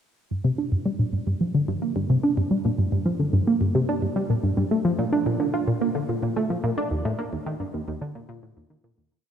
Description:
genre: ambient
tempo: 109 BPM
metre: 4/4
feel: straight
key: unclear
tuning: A4 = 440 Hz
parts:
  - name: tight sequenced synth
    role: solo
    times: 0.3-9.1 s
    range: Eb2 to F4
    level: -22 LUFS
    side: equal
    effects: chorus, analog delay
room: wet plate reverb, RT60 3.4 s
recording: dark, warm production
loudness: -22 LUFS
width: side -8 dB against mid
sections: 0.3-9.1 A section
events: fade-out 6.2-9.1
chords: none

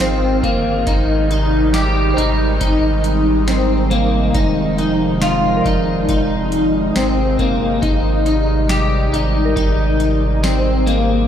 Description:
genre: dream pop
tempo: 69 BPM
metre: 4/4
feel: straight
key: unclear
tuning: A4 = 440 Hz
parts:
  - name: phased analog pad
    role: sustained chords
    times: 0.0-11.3 s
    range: C3 to F4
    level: -21 LUFS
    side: right 1 dB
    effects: phaser, chorus, shimmer reverb
  - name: electric guitar at the edge of break-up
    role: arpeggios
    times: 0.0-11.3 s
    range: Bb3 to G4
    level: -18 LUFS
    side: left 2 dB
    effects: ensemble chorus, digital delay, shimmer reverb
  - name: warm sub bass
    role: bass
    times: 0.0-11.3 s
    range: F1 to Ab1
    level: -19 LUFS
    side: equal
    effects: none
  - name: booming analog drum machine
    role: drums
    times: 0.0-11.1 s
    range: hi-hat, kick drum, snare drum, tambourine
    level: -22 LUFS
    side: equal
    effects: overdrive
  - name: soft synth bell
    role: texture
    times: 0.0-10.7 s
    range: Bb4 to D5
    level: -29 LUFS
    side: right 4 dB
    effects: chorus, digital delay, shimmer reverb
room: moderate lush hall reverb, RT60 2.7 s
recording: played on a big sound system in a bare room, large studio reverb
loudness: -14 LUFS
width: side -9 dB against mid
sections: 0.0-11.3 A section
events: none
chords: 0.0 Fm7; 0.9 Abmaj7; 4.3 Fm7; 7.8 Abmaj7

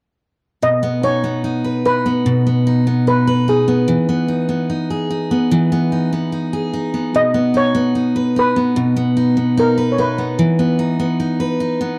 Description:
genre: pop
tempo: 74 BPM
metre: 4/4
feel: straight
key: B major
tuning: A4 = 440 Hz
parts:
  - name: steel pan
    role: melody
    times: 0.6-11.2 s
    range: G#4 to D#5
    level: -20 LUFS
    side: equal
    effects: none
  - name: picked steel-string acoustic guitar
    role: accompaniment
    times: 0.6-12.0 s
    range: B2 to B4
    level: -18 LUFS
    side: equal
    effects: none
room: moderate booth ambience, RT60 0.2 s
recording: dry, close 1970s-style studio recording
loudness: -17 LUFS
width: mono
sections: 0.6-12.0 A section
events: none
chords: 0.6 B; 3.9 Emaj7; 10.4 E5

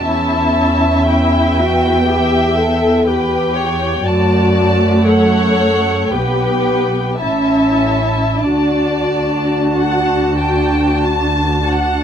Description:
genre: classical, slow romantic movement for string orchestra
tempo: 43-61 BPM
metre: 4/4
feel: rubato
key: D major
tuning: A4 = 440 Hz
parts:
  - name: muted chamber violin section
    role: melody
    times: 0.0-12.0 s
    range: F#5 to A5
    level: -21 LUFS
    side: equal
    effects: none
  - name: muted chamber violin section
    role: second line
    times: 0.0-12.0 s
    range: B4 to A5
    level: -20 LUFS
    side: left 1 dB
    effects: none
  - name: muted chamber viola section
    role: accompaniment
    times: 0.0-12.0 s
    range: E4 to A4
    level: -18 LUFS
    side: left 2 dB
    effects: none
  - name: muted chamber cello section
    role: bass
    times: 0.0-12.0 s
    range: A3 to D4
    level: -18 LUFS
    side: right 1 dB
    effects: none
  - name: muted symphonic double bass section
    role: bass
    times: 0.0-12.0 s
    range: A1 to F#2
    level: -18 LUFS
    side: right 1 dB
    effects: none
room: light reverb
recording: close, detailed microphones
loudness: -12 LUFS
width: side -8 dB against mid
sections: 0.0-12.0 A section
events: none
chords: 0.1 Em; 4.1 D/F#; 6.1 G/B; 7.2 A; 8.4 D

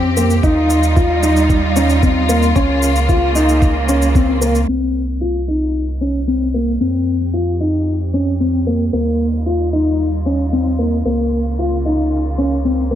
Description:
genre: piano and strings electronica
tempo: 113 BPM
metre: 4/4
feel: straight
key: unclear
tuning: A4 = 440 Hz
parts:
  - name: rich studio string section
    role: sustained chords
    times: 0.0-13.0 s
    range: C3 to G4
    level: -23 LUFS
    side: right 1 dB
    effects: sidechain pumping
  - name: dark concert grand piano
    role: riff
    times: 0.0-13.0 s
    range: Bb3 to F4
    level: -17 LUFS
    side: left 1 dB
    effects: ping-pong delay
  - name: warm sub bass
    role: bass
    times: 0.0-13.0 s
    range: C2 to F2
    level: -19 LUFS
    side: right 1 dB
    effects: sidechain pumping
  - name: shaker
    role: drums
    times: 0.2-4.7 s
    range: none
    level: -28 LUFS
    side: equal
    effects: overdrive, studio reverb
  - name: electronic kick drum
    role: drums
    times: 0.4-4.3 s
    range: none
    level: -15 LUFS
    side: right 1 dB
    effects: overdrive, studio reverb
room: light reverb, studio ambience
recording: low-pass filter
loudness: -14 LUFS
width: side -10 dB against mid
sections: 0.0-4.7 A section; 4.7-13.0 B section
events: fade-in on string section 4.7-13.0; filter sweep 4.7-13.0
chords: 0.4 Ebadd9; 2.6 Bbm/Db; 4.7 Cm7; 6.8 Fsus2; 8.9 Ebadd9; 11.1 Bbm/Db

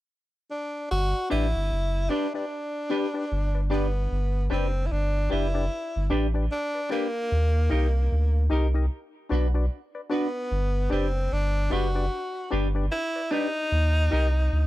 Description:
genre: reggae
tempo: 75 BPM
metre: 4/4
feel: swing 61% on 16ths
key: G major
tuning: A4 = 440 Hz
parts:
  - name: clear tenor saxophone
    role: melody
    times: 0.5-14.7 s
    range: Bb3 to F#4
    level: -30 LUFS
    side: equal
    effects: tape echo
  - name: warm sub bass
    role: bass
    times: 0.9-14.7 s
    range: F#1 to Eb2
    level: -24 LUFS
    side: equal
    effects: none
  - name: clean electric guitar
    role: accompaniment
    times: 1.3-14.3 s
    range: D4 to B4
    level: -33 LUFS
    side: right 3 dB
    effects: phaser, tape echo
  - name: percussive organ stab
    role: stabs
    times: 1.3-14.3 s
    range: D4 to Eb5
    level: -30 LUFS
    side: left 5 dB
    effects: chorus
room: little or no reverb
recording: dry, close 1970s-style studio recording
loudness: -24 LUFS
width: side -16 dB against mid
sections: 0.9-4.1 A section; 4.1-14.7 B section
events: none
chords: 0.0 N.C.; 0.9 G; 7.3 Eb; 8.9 Bm; 10.5 G; 13.7 Eb

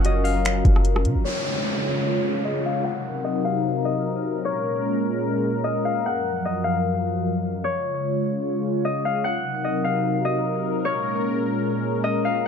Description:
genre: hip hop, atmospheric cloud-rap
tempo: 150 BPM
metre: 4/4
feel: half-time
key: Bb minor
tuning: A4 = 441 Hz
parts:
  - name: Celtic harp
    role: melody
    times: 0.0-12.5 s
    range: Db5 to Gb5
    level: -26 LUFS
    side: left 4 dB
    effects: low-pass filter, digital delay
  - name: sweeping resonant pad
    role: sustained chords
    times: 0.0-12.5 s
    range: Gb2 to Db5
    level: -24 LUFS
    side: left 1 dB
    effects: chorus, low-pass filter
  - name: muted felt-like synth keys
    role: arpeggios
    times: 0.0-1.2 s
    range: Gb3 to Gb4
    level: -34 LUFS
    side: right 5 dB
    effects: chorus, low-pass filter, digital delay
  - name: clean 808-style bass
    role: bass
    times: 0.0-1.2 s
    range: Gb1 to Db3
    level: -21 LUFS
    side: equal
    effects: none
  - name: smooth R&B drum kit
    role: drums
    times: 0.0-1.1 s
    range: finger snaps, hi-hat, kick drum, rim click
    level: -21 LUFS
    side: equal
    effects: none
  - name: downlifter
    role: sound effects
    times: 1.2-4.4 s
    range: none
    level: -30 LUFS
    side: right 1 dB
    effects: none
room: little or no reverb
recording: dark, warm production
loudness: -21 LUFS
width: side -6 dB against mid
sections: 0.0-1.2 A section; 1.2-12.5 B section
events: filter sweep 1.2-12.5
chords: 0.0 Gbmaj7; 1.2 Db; 2.8 Cm7b5; 4.4 Bbm7; 6.0 Gbmaj7; 7.6 Db; 9.2 Cm7b5; 10.8 Bbm7

